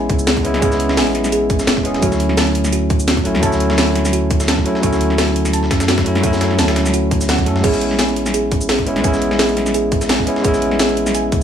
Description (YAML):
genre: liquid drum and bass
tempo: 171 BPM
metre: 4/4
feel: swing 54% on 16ths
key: A major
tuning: A4 = 440 Hz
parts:
  - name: bell-like tine electric piano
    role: accompaniment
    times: 0.0-11.4 s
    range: F#3 to A4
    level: -18 LUFS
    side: equal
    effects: dub echo
  - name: thumb-piano-like synth pluck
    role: arpeggios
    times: 0.0-11.2 s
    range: F#4 to A5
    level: -24 LUFS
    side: right 3 dB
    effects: chorus, cassette tape, tape echo
  - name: sub bass with octave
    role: bass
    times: 0.0-11.4 s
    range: E1 to F#2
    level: -22 LUFS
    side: equal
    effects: tube saturation
  - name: breakbeat sampler-style drum kit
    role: drums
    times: 0.1-11.4 s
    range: hi-hat, snare drum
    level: -26 LUFS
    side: equal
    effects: high-pass filter on snare, high-pass filter on hats
  - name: drum and bass drum kit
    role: drums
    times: 0.1-11.4 s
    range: crash cymbal, hi-hat, shaker, snare drum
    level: -20 LUFS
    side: equal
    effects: overdrive
  - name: electronic kick drum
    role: drums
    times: 0.1-11.4 s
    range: none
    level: -19 LUFS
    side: equal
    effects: overdrive
room: light reverb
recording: studio reverb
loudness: -14 LUFS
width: side -8 dB against mid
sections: 0.0-11.4 A section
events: none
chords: 0.0 Amaj9; 2.0 Dmaj7; 7.6 Amaj9